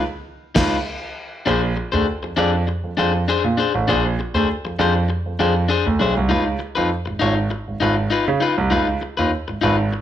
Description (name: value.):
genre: funk.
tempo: 99 BPM.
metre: 4/4.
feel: straight.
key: Bb mixolydian.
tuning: A4 = 440 Hz.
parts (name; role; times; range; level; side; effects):
electric guitar at the edge of break-up; accompaniment; 0.0-10.0 s; D4 to D5; -21 LUFS; left 5 dB; none.
warm concert grand piano; bass; 0.6-9.9 s; Ab1 to Db3; -20 LUFS; right 2 dB; none.
cloth-damped thuddy drum kit; drums; 0.6-0.8 s; crash cymbal, kick drum, snare drum; -24 LUFS; equal; none.
room: light reverb, studio ambience.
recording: none.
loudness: -17 LUFS.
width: side -11 dB against mid.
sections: 0.0-1.5 A section; 1.5-10.0 B section.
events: band accent 0.0-1.5.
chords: 0.0 Db9; 1.5 Bb9; 6.3 Db9.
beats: 0.26 0.86 | 1.47 2.07 2.68 3.28 | 3.89 4.49 5.10 5.70 | 6.30 6.91 7.51 8.11 | 8.72 9.32 9.92.